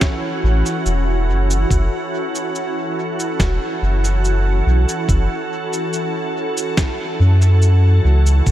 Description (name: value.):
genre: ambient dub.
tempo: 71 BPM.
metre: 4/4.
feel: straight.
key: F# minor.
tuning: A4 = 440 Hz.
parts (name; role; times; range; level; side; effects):
soft additive organ-like pad; sustained chords; 0.0-8.5 s; E3 to A4; -21 LUFS; right 1 dB; ensemble chorus, built-in reverb.
electronic kick drum; drums; 0.0-8.5 s; none; -18 LUFS; equal; studio reverb.
electronic snare drum and shaker; drums; 0.0-8.5 s; none; -26 LUFS; right 1 dB; studio reverb, dub echo.
soft dub sub bass; bass; 0.4-8.5 s; E1 to F#2; -14 LUFS; equal; none.
room: light reverb.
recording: none.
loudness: -15 LUFS.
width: side -13 dB against mid.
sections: 0.0-8.5 A section.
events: none.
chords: 0.0 F#m7.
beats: 0.01 0.86 | 1.70 2.55 3.39 4.24 | 5.08 5.93 6.77 7.62 | 8.46.